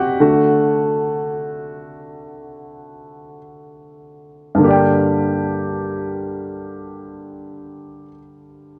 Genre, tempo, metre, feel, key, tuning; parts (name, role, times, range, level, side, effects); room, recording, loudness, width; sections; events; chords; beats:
pop; free time; A4 = 440 Hz
clear concert grand piano; accompaniment; 0.0-8.8 s; G2 to G5; -20 LUFS; equal
moderate plate reverb, RT60 3.0 s; worn, warbling old tape, cassette tape, warbly pitch drift; -18 LUFS; mono
0.0-4.6 A section; 4.6-8.8 B section
slowing down 0.0-4.6; grand piano solo 0.0-4.6
0.2 D; 4.6 Gm
free time